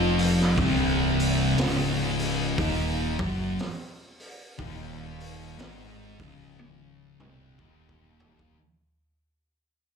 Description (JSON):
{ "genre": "stoner and doom metal", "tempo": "60 BPM", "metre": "4/4", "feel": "swing 61% on 8ths", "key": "unclear", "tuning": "A4 = 443 Hz", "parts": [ { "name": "thick fuzz guitar", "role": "riff", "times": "0.0-8.6 s", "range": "C2 to Ab3", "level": "-28 LUFS", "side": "left 8 dB", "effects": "distortion" }, { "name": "thick fuzz guitar", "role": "riff", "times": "0.0-8.6 s", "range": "C2 to Ab3", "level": "-29 LUFS", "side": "right 9 dB", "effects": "distortion" }, { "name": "growling picked electric bass", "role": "bass", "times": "0.0-8.5 s", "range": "C1 to Ab1", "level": "-32 LUFS", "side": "right 1 dB", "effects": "overdrive" }, { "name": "raw garage drum kit", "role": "drums", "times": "0.2-8.6 s", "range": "hi-hat, kick drum, snare drum, toms", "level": "-32 LUFS", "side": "right 1 dB", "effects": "none" } ], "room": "small room ambience", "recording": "live gig heard through the venue's PA, club ambience", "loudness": "-22 LUFS", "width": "side -6 dB against mid", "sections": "0.0-8.6 A section", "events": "fade-out 0.0-8.6; drum fill 6.6-8.6", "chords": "0.0 N.C.; 0.6 Cm" }